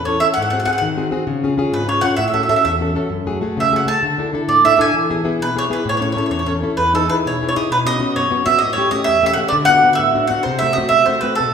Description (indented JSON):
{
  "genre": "italian folk, Italian serenade",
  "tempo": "131 BPM (dotted quarters)",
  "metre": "6/8",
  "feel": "rubato",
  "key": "A major, E major from 6.8 s",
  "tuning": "A4 = 441 Hz",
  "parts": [
    { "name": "mandolin", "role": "melody", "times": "0.0-11.5 s", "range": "A4 to A5", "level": "-16 LUFS", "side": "right 2 dB", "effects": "none" },
    { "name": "nylon-string guitar", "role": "accompaniment", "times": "0.0-11.5 s", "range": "E2 to A4", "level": "-20 LUFS", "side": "left 2 dB", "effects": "none" }
  ],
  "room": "wet recital hall reverb, RT60 1.8 s",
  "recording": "recorded in a church or concert hall",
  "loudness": "-14 LUFS",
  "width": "side -7 dB against mid",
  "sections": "0.0-6.8 A section; 6.8-11.5 B section",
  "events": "none",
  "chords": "0.4 G#7; 1.3 C#; 2.2 A6; 3.1 F#madd9; 4.0 Dsus2; 4.9 E; 5.8 A; 6.8 Emaj7; 7.7 Bsus2; 8.6 A7; 9.5 D6; 10.5 Am6/C",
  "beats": "| 0.36 0.82 | 1.27 1.72 | 2.18 2.65 | 3.11 3.58 | 4.03 4.48 | 4.94 5.39 | 5.85 6.31 | 6.78 7.24 | 7.71 8.16 | 8.61 9.07 | 9.53 9.99 | 10.46 10.92 | 11.38"
}